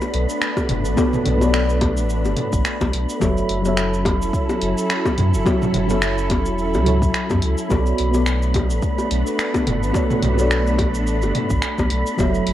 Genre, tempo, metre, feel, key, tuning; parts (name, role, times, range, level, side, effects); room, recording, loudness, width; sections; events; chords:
sunset chillout; 107 BPM; 4/4; swing 56% on 16ths; B minor; A4 = 440 Hz
mellow FM electric piano; accompaniment; 0.0-12.5 s; F#3 to E5; -24 LUFS; equal; chorus, phaser, auto-pan, low-pass filter, tape echo
soft string machine; sustained chords; 0.0-12.5 s; F#3 to A4; -24 LUFS; equal; ensemble chorus
deep house drum kit; drums; 0.0-12.5 s; cabasa, finger snaps, hi-hat, toms; -25 LUFS; equal
bongos; percussion; 0.0-12.3 s; -25 LUFS; left 2 dB
wind-like tuned noise texture; texture; 0.0-12.5 s; B5; -30 LUFS; right 2 dB; built-in reverb
warm sub bass; bass; 0.1-12.5 s; E1 to F#2; -21 LUFS; equal; tube saturation
electronic kick drum; drums; 0.6-12.3 s; -24 LUFS; equal
light reverb; worn, warbling old tape, cassette tape, warbly pitch drift; -17 LUFS; side -12 dB against mid
0.0-12.5 A section
filter sweep on FM electric piano 0.0-12.5
0.0 Bm9; 3.2 F#m7; 7.7 Bm9